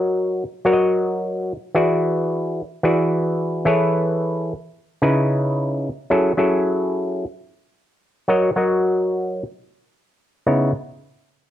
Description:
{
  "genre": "disco",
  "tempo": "110 BPM",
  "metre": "4/4",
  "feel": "straight",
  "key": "unclear",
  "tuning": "A4 = 440 Hz",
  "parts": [
    { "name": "auto-wah clav", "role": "solo", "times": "0.0-10.7 s", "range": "C#3 to D#5", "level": "-18 LUFS", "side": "equal", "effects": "low-pass filter" }
  ],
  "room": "light reverb",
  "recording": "none",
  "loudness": "-18 LUFS",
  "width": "side -12 dB against mid",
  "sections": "0.0-6.1 A section; 6.1-10.5 B section; 10.5-11.5 C section",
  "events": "filter sweep on clav 6.1-10.5",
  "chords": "0.0 D#m7/F#; 1.8 E7; 3.7 Amaj9/E; 5.0 C#m7; 6.1 F#m9; 8.3 D#m7/F#; 10.5 C#m7"
}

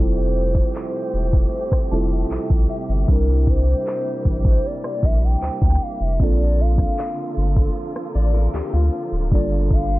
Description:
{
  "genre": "contemporary R&B",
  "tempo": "77 BPM",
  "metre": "4/4",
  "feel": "straight",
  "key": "unclear",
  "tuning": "A4 = 438 Hz",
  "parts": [
    { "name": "gliding portamento lead", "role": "melody", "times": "0.0-10.0 s", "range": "Bb4 to G5", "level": "-27 LUFS", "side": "left 1 dB", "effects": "chorus, ping-pong delay" },
    { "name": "muted felt-like synth keys", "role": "accompaniment", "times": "0.0-10.0 s", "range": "G3 to Bb4", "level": "-27 LUFS", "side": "right 2 dB", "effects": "chorus" },
    { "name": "warm studio string section", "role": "sustained chords", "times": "0.0-10.0 s", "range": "C3 to E5", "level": "-32 LUFS", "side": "right 1 dB", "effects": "none" },
    { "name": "saturated sub bass", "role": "bass", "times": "0.0-10.0 s", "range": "D1 to D2", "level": "-19 LUFS", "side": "equal", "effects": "none" },
    { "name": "smooth R&B drum kit", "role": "drums", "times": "0.5-9.9 s", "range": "handclaps, hi-hat, kick drum, rim click", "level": "-20 LUFS", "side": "equal", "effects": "none" },
    { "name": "small celesta", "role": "texture", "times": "1.9-6.5 s", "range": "C5 to A5", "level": "-38 LUFS", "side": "left 5 dB", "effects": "ping-pong delay" },
    { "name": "picked steel-string acoustic guitar", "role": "arpeggios", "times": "8.2-9.3 s", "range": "F4 to D5", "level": "-29 LUFS", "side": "left 5 dB", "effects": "ping-pong delay" }
  ],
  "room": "little or no reverb",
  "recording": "dark, warm production, low-pass filter",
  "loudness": "-17 LUFS",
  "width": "side -18 dB against mid",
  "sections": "0.0-10.0 A section",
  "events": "break 7.8-9.3",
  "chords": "0.0 Fmaj9; 3.1 C7; 6.2 Bbmaj7; 9.3 Fadd9"
}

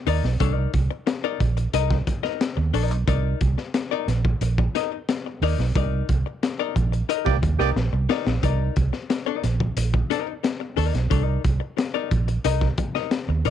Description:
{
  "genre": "funk",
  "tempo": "90 BPM",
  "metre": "4/4",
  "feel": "straight",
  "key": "C minor",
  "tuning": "A4 = 440 Hz",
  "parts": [
    { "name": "archtop guitar, miked and amplified", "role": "accompaniment", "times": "0.1-13.5 s", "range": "Eb4 to Eb5", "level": "-27 LUFS", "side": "left 14 dB", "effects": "none" },
    { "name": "vintage muted fingered electric bass", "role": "bass", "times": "0.1-13.5 s", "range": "Bb1 to Eb2", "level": "-22 LUFS", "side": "right 3 dB", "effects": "none" },
    { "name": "crunchy breakbeat drum kit", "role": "drums", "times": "0.1-13.5 s", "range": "hi-hat, kick drum, snare drum", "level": "-26 LUFS", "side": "left 2 dB", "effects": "none" },
    { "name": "warm horn section", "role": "second line", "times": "7.2-7.7 s", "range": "Bb3 to D5", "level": "-24 LUFS", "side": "right 16 dB", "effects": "none" }
  ],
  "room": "little or no reverb",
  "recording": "1960s-style stereo with parts hard left and right",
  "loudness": "-21 LUFS",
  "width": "side -10 dB against mid",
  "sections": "0.0-13.5 A section",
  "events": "band accent 5.8-8.4; drum fill 7.8-8.4",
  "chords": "0.0 Cm9"
}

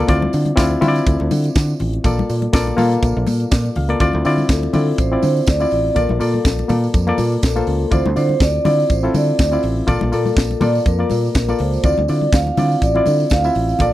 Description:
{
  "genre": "disco",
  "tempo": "122 BPM",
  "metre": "4/4",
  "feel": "swing 56% on 16ths",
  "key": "D minor",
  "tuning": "A4 = 444 Hz",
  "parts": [
    { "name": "barky reed electric piano", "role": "accompaniment", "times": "0.0-13.9 s", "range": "Bb3 to F5", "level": "-20 LUFS", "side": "left 2 dB", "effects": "overdrive" },
    { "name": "fingered electric bass", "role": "bass", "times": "0.1-13.9 s", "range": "A1 to D3", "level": "-19 LUFS", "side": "equal", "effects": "none" },
    { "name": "tight funk drum kit", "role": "drums", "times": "0.1-13.9 s", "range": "hi-hat, kick drum, snare drum", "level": "-17 LUFS", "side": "equal", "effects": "none" },
    { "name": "congas", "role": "percussion", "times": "0.1-13.9 s", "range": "none", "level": "-26 LUFS", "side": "left 3 dB", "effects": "none" },
    { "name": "tambourine", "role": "percussion", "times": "0.1-13.9 s", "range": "none", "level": "-37 LUFS", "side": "right 12 dB", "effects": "none" },
    { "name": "vibraphone with soft mallets", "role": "melody", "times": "4.5-13.9 s", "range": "A4 to F5", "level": "-20 LUFS", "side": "right 1 dB", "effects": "none" }
  ],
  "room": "small room ambience",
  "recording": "dry, close 1970s-style studio recording",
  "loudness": "-14 LUFS",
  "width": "side -14 dB against mid",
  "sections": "0.0-4.0 A section; 4.0-13.9 B section",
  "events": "reed electric piano fill 3.3-4.0; vibraphone solo 4.0-13.9",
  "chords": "0.1 Dm9; 2.0 Bbmaj7; 4.0 Dm9; 6.0 Bbmaj7; 7.9 Dm9; 9.9 Bbmaj7; 11.8 Dm9"
}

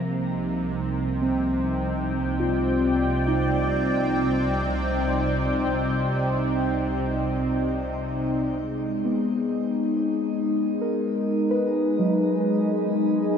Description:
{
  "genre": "ambient",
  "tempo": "51 BPM",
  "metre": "4/4",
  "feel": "straight",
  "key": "unclear",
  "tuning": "A4 = 439 Hz",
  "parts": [
    { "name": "warm analog pad", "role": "sustained chords", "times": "0.0-13.4 s", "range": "C3 to A#5", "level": "-24 LUFS", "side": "equal", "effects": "chorus, shimmer reverb" },
    { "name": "muted felt-like synth keys", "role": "arpeggios", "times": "0.0-13.4 s", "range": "E#3 to B4", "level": "-28 LUFS", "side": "left 1 dB", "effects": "chorus, diffuse ambient delay, shimmer reverb" },
    { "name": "warm studio double bass section", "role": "bass", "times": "0.0-8.5 s", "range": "C2", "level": "-30 LUFS", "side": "equal", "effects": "none" }
  ],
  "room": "wet huge ambient reverb, RT60 8.0 s",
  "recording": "dark, warm production",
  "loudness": "-22 LUFS",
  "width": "side -7 dB against mid",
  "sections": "0.0-8.6 A section; 8.6-13.4 B section",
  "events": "filter sweep on analog synth pad 8.6-13.4",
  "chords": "0.0 Cmadd9; 8.6 G#m7"
}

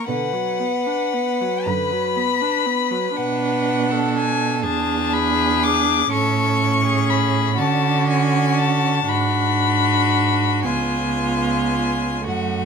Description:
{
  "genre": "classical, slow romantic movement for string quartet",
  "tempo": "35-42 BPM (dotted quarters)",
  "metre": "6/8",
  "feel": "rubato",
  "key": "unclear",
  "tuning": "A4 = 440 Hz",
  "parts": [
    { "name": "rich violin", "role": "melody", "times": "0.0-12.7 s", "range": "F#5 to D6", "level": "-22 LUFS", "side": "left 9 dB", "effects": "none" },
    { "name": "clear violin", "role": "second line", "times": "0.0-12.7 s", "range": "E#4 to B4", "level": "-24 LUFS", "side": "left 2 dB", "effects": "none" },
    { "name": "rich viola", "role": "accompaniment", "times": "0.0-12.7 s", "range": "D3 to D4", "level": "-24 LUFS", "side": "right 4 dB", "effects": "none" },
    { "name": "rich cello", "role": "bass", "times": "0.1-12.7 s", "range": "C#2 to D3", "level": "-23 LUFS", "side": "right 6 dB", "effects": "none" }
  ],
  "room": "light reverb",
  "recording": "close, detailed microphones",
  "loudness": "-17 LUFS",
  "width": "side -6 dB against mid",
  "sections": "0.0-12.7 A section",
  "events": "none",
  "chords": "0.1 Bm; 4.6 E7; 6.1 A; 7.6 Dmaj7; 9.1 G#m7b5; 10.7 C#7"
}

